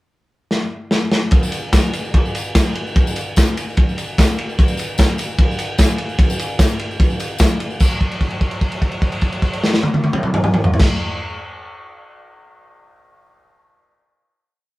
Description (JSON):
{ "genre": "rock", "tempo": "148 BPM", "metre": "4/4", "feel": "straight", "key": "none", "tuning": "none", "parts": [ { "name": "crunchy breakbeat drum kit", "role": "drums", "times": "0.5-10.9 s", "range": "crash cymbal, kick drum, ride cymbal, snare drum, toms", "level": "-15 LUFS", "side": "equal", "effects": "none" }, { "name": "tambourine", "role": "percussion", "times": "1.3-8.0 s", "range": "none", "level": "-32 LUFS", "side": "left 2 dB", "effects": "none" } ], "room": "light reverb", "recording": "band playing live in one room", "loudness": "-15 LUFS", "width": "side -19 dB against mid", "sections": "0.0-1.3 pickup bar; 1.3-7.8 riff; 7.8-11.0 final hit", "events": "drum fill 0.5-1.3; held note 7.8-10.8", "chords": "none", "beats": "0.08 0.49 0.90 | 1.31 1.72 2.13 2.54 | 2.95 3.35 3.76 4.16 | 4.57 4.97 5.38 5.78 | 6.18 6.58 6.99 7.39 | 7.80 8.20 8.61 9.01 | 9.42 9.82 10.23 10.64" }